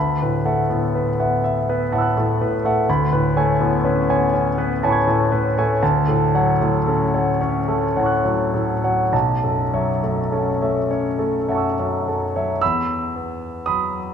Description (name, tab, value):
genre	classical, impressionist solo piano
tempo	33-42 BPM (dotted quarters)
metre	6/8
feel	rubato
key	A major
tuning	A4 = 440 Hz
part	clear concert grand piano	solo	0.0-14.1 s	B1 to G#6	-17 LUFS	equal	none
room	wet concert hall reverb, RT60 2.3 s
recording	minimal, uncompressed stereo recording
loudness	-17 LUFS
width	side -7 dB against mid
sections	0.0-12.6 A section; 12.6-14.1 B section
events	none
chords	0.0 D69; 2.9 Amaj9/D; 5.8 Dmaj7; 9.1 B9sus4; 12.6 Emaj7sus2